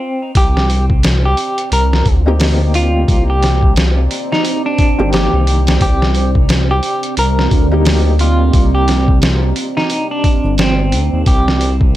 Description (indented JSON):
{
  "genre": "trip hop",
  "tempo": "88 BPM",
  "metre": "4/4",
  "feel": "swing 60% on 16ths",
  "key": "C minor",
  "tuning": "A4 = 440 Hz",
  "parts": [
    { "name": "semi-hollow electric guitar", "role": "melody", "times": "0.0-11.8 s", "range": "C4 to Bb4", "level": "-19 LUFS", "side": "equal", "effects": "tremolo, tape echo" },
    { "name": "deep dark ambient pad", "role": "sustained chords", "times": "1.3-12.0 s", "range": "G3 to D5", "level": "-22 LUFS", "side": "right 4 dB", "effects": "chorus, built-in reverb, vintage 12-bit sampler grit" },
    { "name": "dark detuned saw bass", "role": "bass", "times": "0.4-12.0 s", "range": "G1 to Eb2", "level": "-14 LUFS", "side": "equal", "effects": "none" },
    { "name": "trip hop sampler-style drum kit", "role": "drums", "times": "0.4-11.9 s", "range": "hi-hat, kick drum, snare drum", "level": "-15 LUFS", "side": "equal", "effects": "none" },
    { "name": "felt-muted upright piano", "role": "accompaniment", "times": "2.3-10.4 s", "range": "Eb3 to G4", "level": "-22 LUFS", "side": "left 2 dB", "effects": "tremolo, tape echo" }
  ],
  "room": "digital ambience",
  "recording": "none",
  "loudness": "-11 LUFS",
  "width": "side -14 dB against mid",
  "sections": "0.4-12.0 A section",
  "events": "break 0.0-0.4",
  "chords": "0.4 Cm7",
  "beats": "| 0.35 1.04 1.72 2.40 | 3.08 3.76 4.45 5.13 | 5.81 6.49 7.17 7.85 | 8.54 9.22 9.90 10.58 | 11.26 11.95"
}